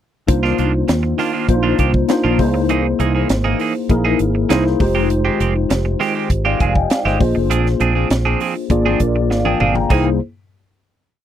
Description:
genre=polished 1980s jazz-funk pop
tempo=100 BPM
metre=4/4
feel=straight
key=C minor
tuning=A4 = 441 Hz
part: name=mellow tine electric piano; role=accompaniment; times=0.3-10.2 s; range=Ab3 to Bb5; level=-18 LUFS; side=left 3 dB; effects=medium stereo tremolo, ensemble chorus
part: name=clean electric guitar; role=riff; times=0.3-10.1 s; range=Eb3 to G#4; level=-20 LUFS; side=right 8 dB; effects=wide subtle chorus
part: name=fretless electric bass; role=bass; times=0.3-10.2 s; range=F1 to Eb2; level=-19 LUFS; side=equal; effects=ensemble chorus
part: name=crisp fusion drum kit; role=drums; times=0.3-10.0 s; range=crash cymbal, hi-hat, kick drum, snare drum, toms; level=-19 LUFS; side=equal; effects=none
room=little or no reverb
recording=dry, close 1970s-style studio recording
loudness=-14 LUFS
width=side -10 dB against mid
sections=0.3-9.9 verse; 9.9-11.2 final chord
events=drum fill 9.3-9.9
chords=0.3 Cm11; 2.4 C7alt; 4.8 Fm9; 7.2 Bb9; 9.9 C7alt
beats=| 0.28 0.89 1.49 2.09 | 2.69 3.30 3.90 4.50 | 5.10 5.70 6.30 6.91 | 7.50 8.11 8.71 9.30 | 9.90

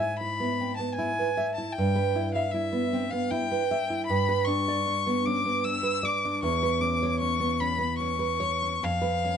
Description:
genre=romantic duo for violin and classical guitar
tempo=77 BPM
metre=3/4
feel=rubato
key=unclear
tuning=A4 = 441 Hz
part: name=clear violin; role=melody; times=0.0-9.4 s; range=E5 to E6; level=-28 LUFS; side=left 4 dB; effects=none
part: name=nylon-string guitar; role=accompaniment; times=0.0-9.4 s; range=E2 to E5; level=-27 LUFS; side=right 2 dB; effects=none
room=light reverb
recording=nothing above 10.3 kHz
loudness=-25 LUFS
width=side -8 dB against mid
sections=0.0-9.4 A section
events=none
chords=0.0 E/G#; 1.8 Em/G; 4.1 G; 6.4 C#m7/E; 8.8 C#7/E#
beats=0.18 0.97 | 1.75 2.52 3.31 | 4.08 4.86 5.66 | 6.44 7.21 8.00 | 8.83

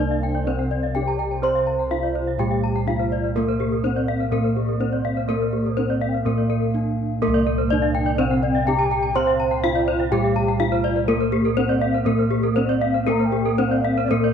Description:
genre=gamelan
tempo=124 BPM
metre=4/4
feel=straight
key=C slendro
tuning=A4 = 440 Hz
part: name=gamelan-type bronze metallophone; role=melody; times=0.0-14.3 s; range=Bb3-45c to C5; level=-24 LUFS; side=left 1 dB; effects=none
part: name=gamelan-type bronze metallophone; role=accompaniment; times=0.0-14.3 s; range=C3 to C4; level=-28 LUFS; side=right 12 dB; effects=none
part: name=gamelan-type bronze metallophone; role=arpeggios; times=0.0-14.2 s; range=G4+25c to C6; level=-26 LUFS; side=left 10 dB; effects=none
part: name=gamelan-type bossed gongs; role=bass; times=0.0-14.3 s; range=C2 to C5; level=-24 LUFS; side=equal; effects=none
part: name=gamelan-type bronze metallophone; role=arpeggios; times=0.1-14.3 s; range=Bb4-45c to Bb5-45c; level=-29 LUFS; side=right 11 dB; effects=none
part: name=mellow bansuri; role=second line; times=0.2-14.3 s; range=G4 to Bb5-36c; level=-32 LUFS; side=left 8 dB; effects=none
room=light reverb, small room ambience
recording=1960s-style stereo with parts hard left and right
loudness=-19 LUFS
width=side -7 dB against mid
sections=0.0-14.3 A section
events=none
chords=none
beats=0.47 0.95 | 1.43 1.92 2.40 2.88 | 3.36 3.85 4.33 4.81 | 5.29 5.78 6.26 6.74 | 7.22 7.71 8.19 8.67 | 9.15 9.64 10.12 10.60 | 11.09 11.57 12.06 12.56 | 13.07 13.58 14.10

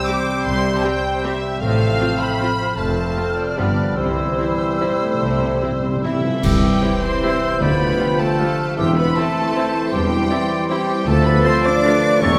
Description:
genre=classical, orchestral ballroom waltz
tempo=137-169 BPM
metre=3/4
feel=rubato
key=C major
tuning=A4 = 440 Hz
part: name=clear studio violin section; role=melody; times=0.0-12.4 s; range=C5 to D6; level=-30 LUFS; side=equal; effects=none
part: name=bright small flute group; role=second line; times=0.0-12.4 s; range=C6 to A6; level=-31 LUFS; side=equal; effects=none
part: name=mellow cor anglais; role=second line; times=0.0-12.4 s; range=E4 to D5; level=-29 LUFS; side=equal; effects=none
part: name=warm clarinet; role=second line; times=0.0-12.4 s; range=C4 to G5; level=-30 LUFS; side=equal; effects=none
part: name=warm studio violin section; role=second line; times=0.0-12.4 s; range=E4 to D6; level=-31 LUFS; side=equal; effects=none
part: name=mellow bassoon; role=accompaniment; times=0.0-12.4 s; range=E3 to A3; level=-28 LUFS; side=equal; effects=none
part: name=mellow French horn section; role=sustained chords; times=0.0-12.4 s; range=E3 to F4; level=-28 LUFS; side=equal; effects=none
part: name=concert harp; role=arpeggios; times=0.0-12.4 s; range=E2 to C6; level=-30 LUFS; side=equal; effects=none
part: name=clear studio viola section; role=accompaniment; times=0.1-11.9 s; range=G3 to G4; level=-33 LUFS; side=equal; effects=none
part: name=bright studio cello section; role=bass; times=0.5-12.4 s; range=F2 to D4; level=-29 LUFS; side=equal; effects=none
part: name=clear studio double bass section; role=bass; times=0.5-12.4 s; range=F1 to E2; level=-28 LUFS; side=equal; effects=none
part: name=timpani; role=percussion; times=4.0-8.1, 11.1-11.6 s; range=C3 to D3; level=-27 LUFS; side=equal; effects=none
part: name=mellow tuba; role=bass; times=6.4-12.4 s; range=E1 to D2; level=-29 LUFS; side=equal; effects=none
part: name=clash cymbals and concert bass drum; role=percussion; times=6.4-7.2 s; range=none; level=-27 LUFS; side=equal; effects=none
room=wet concert hall reverb, RT60 2.0 s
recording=none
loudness=-19 LUFS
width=mono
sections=0.0-6.4 A section; 6.4-12.4 A section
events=timpani fill 4.0-6.4; band accent 6.4-6.8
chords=0.0 C; 1.6 F/A; 2.8 F; 3.6 G7; 4.0 C; 7.6 G7/D; 8.8 C/E; 11.1 Dm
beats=0.07 | 0.45 0.83 1.24 | 1.61 2.00 2.40 | 2.78 3.16 3.58 | 3.97 4.39 4.81 | 5.21 5.62 6.04 | 6.43 6.83 7.23 | 7.60 7.99 8.39 | 8.77 9.16 9.55 | 9.92 10.30 10.69 | 11.07 11.45 11.84 | 12.21

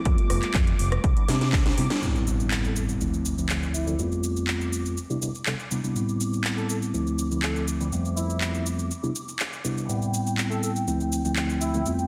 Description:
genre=filtered disco house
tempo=122 BPM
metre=4/4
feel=straight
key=unclear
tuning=A4 = 439 Hz
part: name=muted studio string section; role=sustained chords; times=0.0-12.1 s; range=G5 to D6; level=-41 LUFS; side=equal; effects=sidechain pumping, low-pass filter
part: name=bell-like tine electric piano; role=accompaniment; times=0.1-12.1 s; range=D2 to A4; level=-29 LUFS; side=equal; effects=phaser, sidechain pumping, low-pass filter
part: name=fingered electric bass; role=bass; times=0.1-1.9 s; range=F1 to C3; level=-28 LUFS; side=equal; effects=sidechain pumping, low-pass filter
part: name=electronic kick drum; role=drums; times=0.1-1.6 s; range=none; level=-25 LUFS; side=equal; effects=overdrive
part: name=house drum kit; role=drums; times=0.1-12.1 s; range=handclaps, hi-hat, rim click, shaker, snare drum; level=-33 LUFS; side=equal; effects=overdrive, sidechain pumping on hats, sidechain pumping on perc
part: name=impact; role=sound effects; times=2.0-4.0 s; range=none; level=-34 LUFS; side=equal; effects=none
part: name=bright horn section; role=melody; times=2.6-11.9 s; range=E4 to A4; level=-38 LUFS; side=equal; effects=sidechain pumping, low-pass filter, dub echo
room=moderate echo chamber reverb, RT60 1.4 s, digital ambience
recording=dense, heavily limited modern master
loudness=-26 LUFS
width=mono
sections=0.0-2.0 A section; 2.0-12.1 B section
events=drum fill 1.3-2.0; band accent 1.9; impact 2.0-4.0; filter sweep 2.0-12.1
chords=0.1 Fadd9; 1.0 Cmaj9; 2.0 Am7; 3.0 Dm9; 4.0 Fadd9; 5.0 Cmaj9; 6.0 Am7; 6.9 Dm9; 7.9 Fmaj9#11; 8.9 Cmaj9; 9.9 Am7; 10.9 Dm9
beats=| 0.06 0.55 1.04 1.53 | 2.02 2.51 3.00 3.50 | 3.99 4.48 4.97 5.46 | 5.96 6.45 6.94 7.43 | 7.92 8.41 8.91 9.40 | 9.89 10.38 10.87 11.37 | 11.86

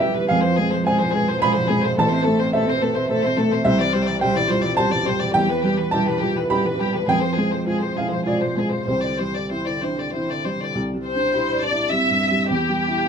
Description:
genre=neoclassical piano and strings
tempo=95-108 BPM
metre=3/4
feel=rubato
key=C major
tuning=A4 = 440 Hz
part: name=muted chamber violin section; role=melody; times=0.0-13.1 s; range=G4 to E5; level=-23 LUFS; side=left 4 dB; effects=none
part: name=muted cello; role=second line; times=0.0-13.1 s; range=D3 to E4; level=-26 LUFS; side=right 5 dB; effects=none
part: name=dark upright piano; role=accompaniment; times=0.0-13.1 s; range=A1 to B5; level=-22 LUFS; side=right 1 dB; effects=none
part: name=concert harp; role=arpeggios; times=0.0-13.1 s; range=C4 to E5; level=-30 LUFS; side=right 4 dB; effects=none
room=little or no reverb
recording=close, detailed microphones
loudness=-18 LUFS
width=side -7 dB against mid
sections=0.0-10.7 A section; 10.7-13.1 B section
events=none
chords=0.3 Fm; 2.0 Am; 3.7 Cadd9; 5.4 Em; 7.1 Fm; 8.9 Cadd9; 12.5 Em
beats=| 0.30 0.86 1.42 | 1.98 2.54 3.10 | 3.66 4.22 4.78 | 5.35 5.93 6.51 | 7.08 7.66 8.26 | 8.88 9.51 10.12 | 10.74 11.32 11.90 | 12.48 13.05

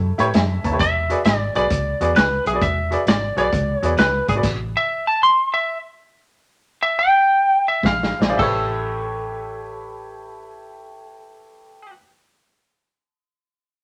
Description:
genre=electric blues shuffle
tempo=106-132 BPM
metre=4/4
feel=swing 67% on 8ths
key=A mixolydian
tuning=A4 = 440 Hz
part: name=lightly driven lead guitar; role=melody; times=0.0-11.9 s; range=G#4 to C6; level=-21 LUFS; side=equal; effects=none
part: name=vintage muted fingered electric bass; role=bass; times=0.0-4.7, 7.8-11.9 s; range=E1 to A2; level=-27 LUFS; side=equal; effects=none
part: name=clear upright piano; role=accompaniment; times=0.2-4.4, 8.2-12.0 s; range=E4 to A5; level=-26 LUFS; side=equal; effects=none
part: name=vintage drum kit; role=drums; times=0.2-4.6, 7.8-8.6 s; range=crash cymbal, hi-hat, kick drum, snare drum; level=-24 LUFS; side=equal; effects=none
room=moderate studio reverb, RT60 0.9 s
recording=none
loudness=-19 LUFS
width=mono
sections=0.0-8.4 A section; 8.4-12.9 B section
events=upright piano fill 0.1-0.8; slowing down 4.4-8.4; drum fill 7.8-8.4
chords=0.0 A9; 0.8 E9; 4.4 A5; 7.8 Bb9; 8.4 A9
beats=0.34 | 0.80 1.25 1.71 2.16 | 2.62 3.07 3.53 3.98 | 4.43 4.89 5.35 5.82 | 6.30 6.80 7.31 7.84 | 8.39 8.96 9.53 10.10 | 10.66 11.23 11.80

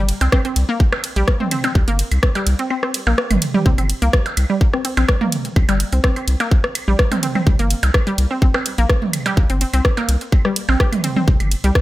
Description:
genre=minimal techno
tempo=126 BPM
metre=4/4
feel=straight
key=unclear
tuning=A4 = 440 Hz
part: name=round analog bass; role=bass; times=0.0-11.7 s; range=G1 to C2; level=-17 LUFS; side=equal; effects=sidechain pumping
part: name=garage drum kit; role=drums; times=0.1-11.8 s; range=hi-hat, ride cymbal, rim click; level=-23 LUFS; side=equal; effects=small room reverb
part: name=resonant blip pluck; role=riff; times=0.2-11.7 s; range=G3 to G4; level=-23 LUFS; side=equal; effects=chorus, cassette tape, sidechain pumping, dub echo
part: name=electronic percussion blips, claves and toms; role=percussion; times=0.2-11.5 s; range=none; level=-23 LUFS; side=right 3 dB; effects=small room reverb, tape echo
part: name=electronic kick drum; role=drums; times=0.3-11.8 s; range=none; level=-15 LUFS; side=equal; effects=small room reverb
room=little or no reverb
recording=none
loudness=-15 LUFS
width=side -16 dB against mid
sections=0.0-11.8 A section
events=kick drops out 2.7-3.7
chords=0.0 C5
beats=0.32 0.80 1.28 | 1.75 2.23 2.71 3.18 | 3.66 4.13 4.61 5.09 | 5.56 6.04 6.51 6.99 | 7.47 7.94 8.42 8.89 | 9.37 9.85 10.32 10.80 | 11.28 11.75

